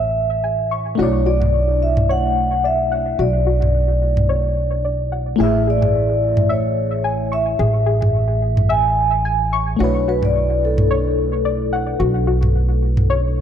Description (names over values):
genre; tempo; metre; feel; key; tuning
sunset chillout; 109 BPM; 4/4; swing 57% on 16ths; unclear; A4 = 440 Hz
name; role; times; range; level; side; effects
vibraphone with soft mallets; melody; 0.0-13.4 s; A4 to G#5; -20 LUFS; moving between left 7 dB and right 4 dB; auto-pan, analog delay
mellow FM electric piano; accompaniment; 0.0-13.4 s; A3 to G#5; -25 LUFS; moving between left 4 dB and right 4 dB; chorus, phaser, auto-pan, analog delay
soft round pluck; arpeggios; 0.0-13.3 s; F#4 to C#6; -26 LUFS; left 3 dB; chorus, cassette tape, analog delay
upright bass; bass; 0.0-13.4 s; A1 to B1; -19 LUFS; equal; none
electronic toms; drums; 1.4-13.1 s; none; -21 LUFS; right 1 dB; none
room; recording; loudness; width
light reverb; echo-heavy mix; -15 LUFS; side -9 dB against mid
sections
0.0-13.4 A section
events
none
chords
0.0 Amaj7; 1.0 Bm11; 5.4 Amaj7; 9.8 Bm11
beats
0.44 | 0.99 1.54 2.09 2.64 | 3.19 3.74 4.29 4.84 | 5.39 5.94 6.49 7.04 | 7.59 8.14 8.70 9.24 | 9.80 10.35 10.90 11.45 | 12.00 12.55 13.10